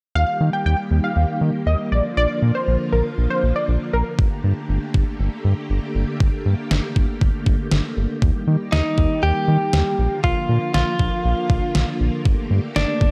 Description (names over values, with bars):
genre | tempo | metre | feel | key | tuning
synth-pop | 119 BPM | 4/4 | straight | unclear | A4 = 442 Hz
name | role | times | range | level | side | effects
funky polysynth comp | second line | 0.2-4.0 s | Bb4 to G5 | -26 LUFS | equal | chorus, slapback echo
string machine, violins | sustained chords | 0.2-13.1 s | D3 to G4 | -29 LUFS | equal | ensemble chorus
round analog bass | bass | 0.2-13.1 s | G1 to Eb3 | -21 LUFS | equal | none
detuned 8-bit digital drum machine | drums | 4.2-13.1 s | kick drum, snare drum | -22 LUFS | equal | overdrive
direct-recorded clean electric guitar | melody | 8.7-13.1 s | D4 to G4 | -24 LUFS | equal | slapback echo
room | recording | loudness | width
light reverb | none | -20 LUFS | mono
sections
0.2-8.2 A section; 8.2-13.1 B section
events
none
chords
0.2 Eb; 1.9 Bb; 4.2 Gmadd9; 8.2 Eb; 10.0 Bb; 12.3 Gmadd9